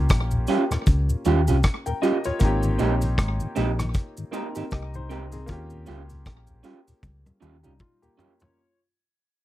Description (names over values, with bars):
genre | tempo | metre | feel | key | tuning
lovers rock reggae | 78 BPM | 4/4 | swing 58% on 16ths | unclear | A4 = 440 Hz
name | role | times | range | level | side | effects
clear concert grand piano | accompaniment | 0.0-8.8 s | G3 to G5 | -32 LUFS | left 2 dB | none
hollow-body short-scale fingered electric bass | bass | 0.0-7.8 s | Ab1 to Eb2 | -24 LUFS | equal | none
vintage drum kit | drums | 0.1-8.6 s | hi-hat, kick drum, rim click, toms | -21 LUFS | equal | slapback echo
cabasa | percussion | 0.1-8.6 s | none | -44 LUFS | right 1 dB | none
mellow tonewheel organ | accompaniment | 0.3-8.5 s | Eb2 to G4 | -28 LUFS | left 2 dB | slow rotary speaker
electric guitar through a small old amp | stabs | 0.5-8.3 s | C4 to G4 | -25 LUFS | right 5 dB | none
room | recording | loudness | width
little or no reverb | dry, close 1970s-style studio recording | -21 LUFS | side -14 dB against mid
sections
0.0-8.6 A section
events
fade-out 0.0-8.6; drum fill 7.0-8.6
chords
0.0 Eb9; 2.4 Abmaj7; 5.5 Eb9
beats
0.10 0.87 1.64 | 2.41 3.18 3.95 4.72 | 5.49 6.26 7.03 7.80